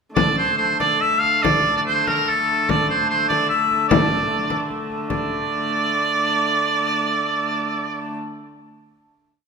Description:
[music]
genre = medieval dance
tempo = 141-164 BPM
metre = 3/4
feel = straight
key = unclear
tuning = A4 = 440 Hz
[part]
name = clear hurdy-gurdy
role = drone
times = 0.1-8.2 s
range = D3 to A3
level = -26 LUFS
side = left 1 dB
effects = none
[part]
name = edgy shawm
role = melody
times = 0.2-8.1 s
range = A4 to F5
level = -19 LUFS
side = right 1 dB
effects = none
[part]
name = frame drum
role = percussion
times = 0.2-5.3 s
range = none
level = -22 LUFS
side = left 3 dB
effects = none
[sound]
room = wet recital hall reverb, RT60 1.6 s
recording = minimal, uncompressed stereo recording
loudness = -18 LUFS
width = side -5 dB against mid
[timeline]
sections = 0.2-5.1 A section; 5.1-7.4 final chord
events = speeding up 0.2-7.4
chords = none

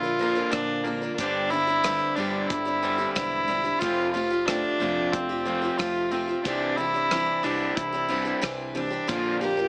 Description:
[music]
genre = folk rock and heartland rock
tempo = 91 BPM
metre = 4/4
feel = straight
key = C mixolydian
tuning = A4 = 441 Hz
[part]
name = clear viola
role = melody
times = 0.0-9.7 s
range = Bb3 to G4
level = -28 LUFS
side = equal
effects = dub echo
[part]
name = picked steel-string acoustic guitar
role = accompaniment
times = 0.0-9.7 s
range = G2 to Bb4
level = -32 LUFS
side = equal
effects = dub echo
[part]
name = crunchy overdriven guitar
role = riff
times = 0.0-9.7 s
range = F2 to Bb3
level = -35 LUFS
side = equal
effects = none
[part]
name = hollow-body short-scale picked electric bass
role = bass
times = 0.0-9.7 s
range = E1 to Bb2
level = -43 LUFS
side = equal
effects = none
[part]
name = damped 70s drum kit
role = drums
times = 0.5-9.2 s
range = hi-hat, kick drum, rim click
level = -35 LUFS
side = equal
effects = dub echo
[sound]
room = moderate spring reverb, RT60 2.6 s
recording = echo-heavy mix, small speaker sound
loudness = -26 LUFS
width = mono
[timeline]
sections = 0.0-9.7 A section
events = none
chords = 0.0 Bb; 1.2 Gsus4; 3.8 Fadd9; 6.5 Cadd9; 9.1 Bb

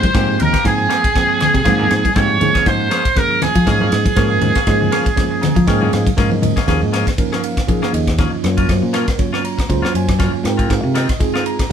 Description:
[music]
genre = electric jazz fusion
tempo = 119 BPM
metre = 4/4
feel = swing 55% on 16ths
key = unclear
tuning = A4 = 444 Hz
[part]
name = trumpet with metal mute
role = melody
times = 0.0-6.1 s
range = Ab4 to Db5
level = -18 LUFS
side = right 2 dB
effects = none
[part]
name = overdriven electric guitar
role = second line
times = 0.0-6.1 s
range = Ab4 to Db5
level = -23 LUFS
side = right 2 dB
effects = none
[part]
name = bell-like tine electric piano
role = accompaniment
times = 0.0-11.7 s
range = F3 to Bb5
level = -20 LUFS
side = right 4 dB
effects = fast stereo tremolo
[part]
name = crisp fusion drum kit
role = drums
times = 0.0-11.7 s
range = kick drum, ride cymbal, rim click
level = -19 LUFS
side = equal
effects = none
[part]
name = congas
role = percussion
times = 0.0-6.6 s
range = none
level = -22 LUFS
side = left 2 dB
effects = none
[part]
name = twangy electric guitar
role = stabs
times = 0.1-11.6 s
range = Eb3 to Ab4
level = -25 LUFS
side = left 5 dB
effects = none
[part]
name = fingered electric bass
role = bass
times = 0.1-11.1 s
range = Bb1 to F3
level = -18 LUFS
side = left 1 dB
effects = none
[sound]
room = moderate studio ambience, RT60 0.4 s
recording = band playing live in one room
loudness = -13 LUFS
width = side -8 dB against mid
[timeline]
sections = 0.0-6.7 A section; 6.7-11.7 B section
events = tine electric piano fill 5.2-6.7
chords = 0.0 Abmaj13; 2.4 Db6/Ab; 6.7 Eb9sus4; 8.4 Gbmaj7; 10.5 Ab69

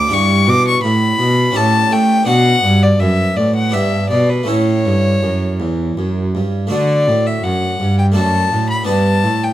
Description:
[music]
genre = classical, baroque-style sonata movement with continuo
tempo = 83 BPM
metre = 3/4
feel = straight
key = D major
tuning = A4 = 440 Hz
[part]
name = rich violin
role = melody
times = 0.0-9.5 s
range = B4 to D6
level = -16 LUFS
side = left 3 dB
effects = none
[part]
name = harpsichord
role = accompaniment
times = 0.0-9.5 s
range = E2 to B4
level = -20 LUFS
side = right 1 dB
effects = none
[part]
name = dark cello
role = bass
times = 0.0-9.5 s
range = D2 to A3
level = -16 LUFS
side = right 1 dB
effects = none
[sound]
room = light reverb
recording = none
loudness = -12 LUFS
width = side -13 dB against mid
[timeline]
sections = 0.0-6.7 A section; 6.7-9.5 B section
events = none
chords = 0.1 Em7/G; 1.6 A7; 2.3 Bm; 3.7 Em7/G; 4.5 A; 6.7 D; 8.2 D/F#; 8.9 G

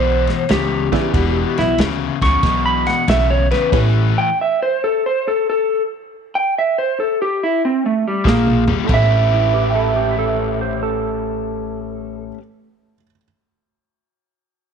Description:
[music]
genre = electric blues shuffle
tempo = 93 BPM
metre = 4/4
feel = swing 67% on 8ths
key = A mixolydian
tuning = A4 = 440 Hz
[part]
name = electric guitar through a small old amp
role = melody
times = 0.0-12.3 s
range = G3 to C#6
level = -18 LUFS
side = right 1 dB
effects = none
[part]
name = overdriven electric guitar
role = riff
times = 0.0-4.3, 8.2-12.4 s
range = E2 to B4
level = -22 LUFS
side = left 12 dB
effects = none
[part]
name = upright bass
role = bass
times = 0.0-4.1, 8.3-12.3 s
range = E1 to D2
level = -20 LUFS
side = equal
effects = none
[part]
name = warm soul drum kit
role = drums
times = 0.3-3.9, 8.2-9.1 s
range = crash cymbal, kick drum, ride cymbal, snare drum, toms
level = -21 LUFS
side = equal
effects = none
[part]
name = warm upright piano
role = accompaniment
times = 0.9-4.1, 8.8-13.2 s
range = A2 to B6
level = -26 LUFS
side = right 12 dB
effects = none
[part]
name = clean lap steel guitar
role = second line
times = 8.3-12.2 s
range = E4 to C5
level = -24 LUFS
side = right 13 dB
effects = none
[sound]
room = light reverb, studio reverb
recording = 1960s-style stereo with parts hard left and right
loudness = -15 LUFS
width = side -6 dB against mid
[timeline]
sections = 0.0-8.9 A section; 8.9-11.5 B section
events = drum fill 8.2-8.9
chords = 0.0 E7; 3.7 A5; 8.2 Bb5; 8.9 A9

